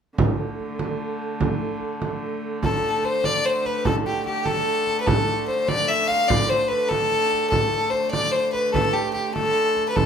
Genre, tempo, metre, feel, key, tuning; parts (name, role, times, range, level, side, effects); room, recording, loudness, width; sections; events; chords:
medieval dance; 98 BPM (dotted quarters); 6/8; straight; A4 = 440 Hz
clear hurdy-gurdy; drone; 0.2-10.1 s; D3 to A3; -29 LUFS; right 2 dB
frame drum; percussion; 0.2-10.1 s; -24 LUFS; right 3 dB
bright fiddle; melody; 2.6-10.1 s; G4 to F5; -21 LUFS; left 2 dB
moderate large studio reverb, RT60 0.8 s; band playing live in one room; -20 LUFS; side -7 dB against mid
0.2-2.6 A section; 2.6-10.1 B section